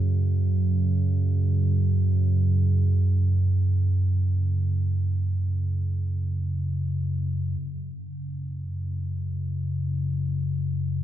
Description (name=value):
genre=ambient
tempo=free time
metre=none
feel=none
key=unclear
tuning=A4 = 440 Hz
part: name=deep rumbling drone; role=solo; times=0.0-11.0 s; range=F#2 to C#3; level=-22 LUFS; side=right 1 dB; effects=built-in reverb, tape echo
room=wet cathedral reverb, RT60 7.1 s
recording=none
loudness=-22 LUFS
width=side -11 dB against mid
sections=0.0-7.6 A section; 7.6-11.0 B section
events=none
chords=0.0 F#5